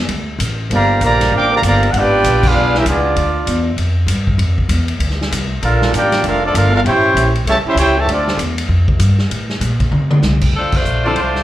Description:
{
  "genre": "jazz, big band swing",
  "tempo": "195 BPM",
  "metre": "4/4",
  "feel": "swing 63% on 8ths",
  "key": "D minor",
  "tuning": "A4 = 440 Hz",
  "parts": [
    { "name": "upright bass", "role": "bass", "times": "0.0-11.4 s", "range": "F1 to C3", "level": "-16 LUFS", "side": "equal", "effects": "none" },
    { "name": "swinging big-band drum kit", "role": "drums", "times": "0.1-11.4 s", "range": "crash cymbal, hi-hat, kick drum, ride cymbal, snare drum, toms", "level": "-20 LUFS", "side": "equal", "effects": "none" },
    { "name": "clear trumpet section", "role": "melody", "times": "0.7-8.4 s", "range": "Bb3 to D6", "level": "-15 LUFS", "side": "right 1 dB", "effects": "plate reverb, slapback echo" },
    { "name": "muted trombone section", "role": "second line", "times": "0.7-8.4 s", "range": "C#3 to G4", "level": "-19 LUFS", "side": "right 2 dB", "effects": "plate reverb, slapback echo" },
    { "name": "edgy saxophone section", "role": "melody", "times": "10.6-11.4 s", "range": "F3 to C5", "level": "-18 LUFS", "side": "left 1 dB", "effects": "slapback echo" },
    { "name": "clear trumpet section", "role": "stabs", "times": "11.0-11.4 s", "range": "F4 to A5", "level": "-17 LUFS", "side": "right 1 dB", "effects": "slapback echo" },
    { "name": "warm grand piano", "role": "accompaniment", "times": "11.1-11.2 s", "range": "F3 to A4", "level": "-23 LUFS", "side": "left 2 dB", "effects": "plate reverb" }
  ],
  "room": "light reverb",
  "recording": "live gig heard through the venue's PA, club reverb",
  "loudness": "-12 LUFS",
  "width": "side -14 dB against mid",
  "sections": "0.0-10.5 A section",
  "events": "band accent 2.4, 10.7; drum fill 9.9-10.2",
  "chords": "0.0 D5; 0.7 Gm7; 1.9 G#dim7; 3.2 Dm7; 5.6 Bbmaj7; 6.8 A7#9; 8.1 Dm7; 9.3 Am; 10.5 Dm7"
}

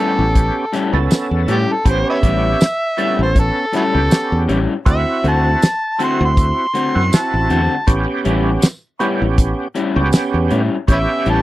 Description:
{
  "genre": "straight-eighth soul blues",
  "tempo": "80 BPM",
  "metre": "4/4",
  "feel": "swing 56% on 16ths",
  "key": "A mixolydian",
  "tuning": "A4 = 441 Hz",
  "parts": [
    { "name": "overdriven harmonica", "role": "melody", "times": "0.0-11.4 s", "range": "E4 to C6", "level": "-19 LUFS", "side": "equal", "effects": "none" },
    { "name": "overdriven tonewheel organ", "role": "accompaniment", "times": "0.0-11.4 s", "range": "B3 to A4", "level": "-20 LUFS", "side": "right 3 dB", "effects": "chorus vibrato, slow rotary speaker" },
    { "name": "electric guitar through a small old amp", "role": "stabs", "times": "0.0-11.4 s", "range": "A2 to F#4", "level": "-20 LUFS", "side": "left 4 dB", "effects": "none" },
    { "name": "fingered electric bass", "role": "bass", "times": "0.2-11.4 s", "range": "A1 to A2", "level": "-18 LUFS", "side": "equal", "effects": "none" },
    { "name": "damped 70s drum kit", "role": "drums", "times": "0.4-11.4 s", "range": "hi-hat, kick drum, snare drum, tambourine", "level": "-14 LUFS", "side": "equal", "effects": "none" }
  ],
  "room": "light reverb",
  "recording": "dry, close 1970s-style studio recording",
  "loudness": "-14 LUFS",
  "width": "side -16 dB against mid",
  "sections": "0.0-11.4 A section",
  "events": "harmonica solo 0.0-11.4",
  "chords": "0.0 A7; 4.9 D7; 7.9 A7"
}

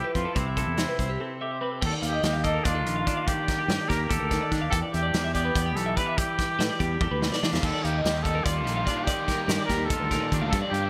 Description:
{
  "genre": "math rock and midwest emo",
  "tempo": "289 BPM (eighths)",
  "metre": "7/8",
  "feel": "straight",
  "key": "unclear",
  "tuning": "A4 = 440 Hz",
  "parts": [
    { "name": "breathy trumpet", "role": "melody", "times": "0.0-10.9 s", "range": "E4 to B4", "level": "-32 LUFS", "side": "equal", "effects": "none" },
    { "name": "twangy electric guitar", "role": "accompaniment", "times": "0.0-10.9 s", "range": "G2 to C5", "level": "-35 LUFS", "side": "equal", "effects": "none" },
    { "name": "twelve-string electric guitar", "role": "arpeggios", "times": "0.0-10.9 s", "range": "G4 to G5", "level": "-34 LUFS", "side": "equal", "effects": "none" },
    { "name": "growling fingered electric bass", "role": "bass", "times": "0.2-10.9 s", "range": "Bb1 to E3", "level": "-32 LUFS", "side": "equal", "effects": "overdrive" },
    { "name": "loose indie drum kit", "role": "drums", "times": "0.2-10.8 s", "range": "crash cymbal, hi-hat, kick drum, snare drum, toms", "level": "-32 LUFS", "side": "equal", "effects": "none" },
    { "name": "overdriven semi-hollow guitar", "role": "riff", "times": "7.6-10.9 s", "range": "G2 to Eb4", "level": "-37 LUFS", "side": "equal", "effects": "analog chorus" }
  ],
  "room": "moderate lush hall reverb, RT60 1.7 s, studio reverb",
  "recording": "bright 1980s-style digital production",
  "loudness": "-26 LUFS",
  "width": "mono",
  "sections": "0.0-1.8 A section; 1.8-10.9 B section",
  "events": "break 1.2-1.8; drum fill 7.0-7.6",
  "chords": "0.4 Cmaj7; 1.8 Ebmaj9#11; 4.7 Em7; 7.6 Ebmaj9#11"
}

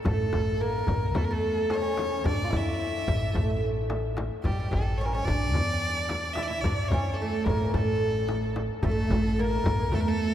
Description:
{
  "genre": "Arabic maqam ensemble",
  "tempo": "109 BPM",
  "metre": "4/4",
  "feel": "straight",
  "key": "A maqam hijaz",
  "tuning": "A4 = 438 Hz",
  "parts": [
    { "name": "darbuka", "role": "percussion", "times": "0.0-10.1 s", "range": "none", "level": "-32 LUFS", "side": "left 1 dB", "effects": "none" },
    { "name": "clear violin", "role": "melody", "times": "0.1-10.3 s", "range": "G4 to E5", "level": "-32 LUFS", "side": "equal", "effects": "tape echo" },
    { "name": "oud", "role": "second line", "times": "0.1-10.3 s", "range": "G3 to F4", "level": "-30 LUFS", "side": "right 1 dB", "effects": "tape echo" },
    { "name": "upright bass", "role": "bass", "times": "0.1-10.3 s", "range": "A1 to E2", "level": "-31 LUFS", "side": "equal", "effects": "none" },
    { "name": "frame drum", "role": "percussion", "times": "0.1-10.1 s", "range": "none", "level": "-33 LUFS", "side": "left 1 dB", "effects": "none" }
  ],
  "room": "wet cathedral reverb, RT60 5.3 s",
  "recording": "dreamy mix soaked in reverb",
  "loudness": "-24 LUFS",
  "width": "side -11 dB against mid",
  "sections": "0.0-10.3 A section",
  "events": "none",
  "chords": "none"
}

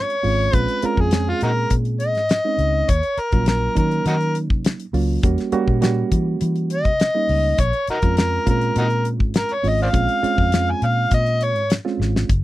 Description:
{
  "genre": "straight-eighth soul blues",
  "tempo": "102 BPM",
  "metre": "4/4",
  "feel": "straight",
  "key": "Bb minor",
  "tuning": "A4 = 444 Hz",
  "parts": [
    { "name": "overdriven harmonica", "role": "melody", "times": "0.0-11.7 s", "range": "Eb4 to Ab5", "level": "-21 LUFS", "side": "left 1 dB", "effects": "none" },
    { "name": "reed electric piano", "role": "accompaniment", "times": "0.0-12.3 s", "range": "Gb3 to Ab4", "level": "-24 LUFS", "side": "right 5 dB", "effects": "none" },
    { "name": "vintage muted fingered electric bass", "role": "bass", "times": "0.0-12.4 s", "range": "Gb1 to E3", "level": "-22 LUFS", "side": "equal", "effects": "none" },
    { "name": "damped 70s drum kit", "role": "drums", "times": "0.1-12.4 s", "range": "hi-hat, kick drum, snare drum", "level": "-20 LUFS", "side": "left 1 dB", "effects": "none" }
  ],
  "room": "little or no reverb",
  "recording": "dry, close 1970s-style studio recording",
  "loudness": "-17 LUFS",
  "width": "side -16 dB against mid",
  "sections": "0.0-12.4 A section",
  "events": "harmonica solo 0.0-12.4; drum fill 12.0",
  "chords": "0.0 Bbm7; 2.9 Ebm7; 5.2 Edim7; 7.6 Bbm7"
}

